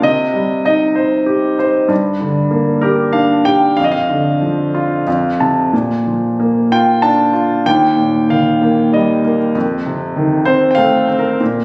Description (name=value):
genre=classical, lyrical solo piano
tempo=96 BPM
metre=3/4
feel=rubato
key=unclear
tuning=A4 = 440 Hz
part: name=clear grand piano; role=solo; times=0.0-11.6 s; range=Eb2 to A5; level=-14 LUFS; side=equal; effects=none
room=moderate recital hall reverb, RT60 1.6 s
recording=recorded on a phone in the room, studio reverb, compression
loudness=-14 LUFS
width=mono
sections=0.0-11.6 A section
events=grand piano fill 4.7-5.7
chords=0.0 Cm; 1.9 Gm; 3.8 Dm/F; 5.1 F; 5.7 Bb; 7.7 Eb; 9.6 F7